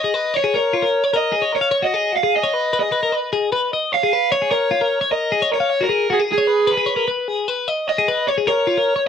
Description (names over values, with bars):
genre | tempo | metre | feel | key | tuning
rock | 152 BPM | 5/4 | straight | F# major | A4 = 440 Hz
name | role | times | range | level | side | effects
raw garage guitar | melody | 0.0-9.0 s | G#4 to E#5 | -19 LUFS | right 2 dB | overdrive, tape echo
twelve-string electric guitar | arpeggios | 0.0-9.1 s | E#4 to E#5 | -20 LUFS | left 4 dB | warbly pitch drift
room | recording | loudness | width
light reverb | none | -16 LUFS | side -8 dB against mid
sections
0.0-9.1 A section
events
none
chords
0.4 D#m7; 2.3 G#m; 4.3 F#add9 (rootless); 6.3 C#5; 8.3 Bmaj7sus2 (rootless)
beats
| 0.35 0.75 1.15 1.54 1.94 | 2.33 2.73 3.13 3.52 3.92 | 4.31 4.71 5.11 5.50 5.90 | 6.29 6.69 7.08 7.48 7.88 | 8.27 8.67 9.06